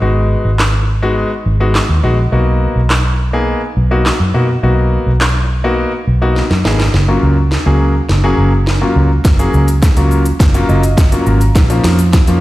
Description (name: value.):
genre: dance-pop.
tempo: 104 BPM.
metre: 4/4.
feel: straight.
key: F# major.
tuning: A4 = 442 Hz.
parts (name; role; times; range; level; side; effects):
warm concert grand piano; accompaniment; 0.0-12.4 s; E#3 to A#5; -16 LUFS; left 2 dB; sidechain pumping.
vintage muted fingered electric bass; bass; 0.0-12.4 s; F#1 to B2; -12 LUFS; equal; sidechain pumping.
house drum kit; drums; 0.6-12.4 s; handclaps, hi-hat, kick drum, shaker, snare drum; -14 LUFS; equal; overdrive.
room: light reverb, digital ambience.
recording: played on a big sound system in a bare room, stone room reverb.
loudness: -10 LUFS.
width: side -16 dB against mid.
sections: 0.0-6.9 A section; 6.9-12.4 B section.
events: drum fill 6.4-6.9, 6.9-12.4; build-up 6.9-12.4; grand piano fill 10.4-11.6.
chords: 0.0 G#m7; 6.9 F#maj7; 11.6 A#m.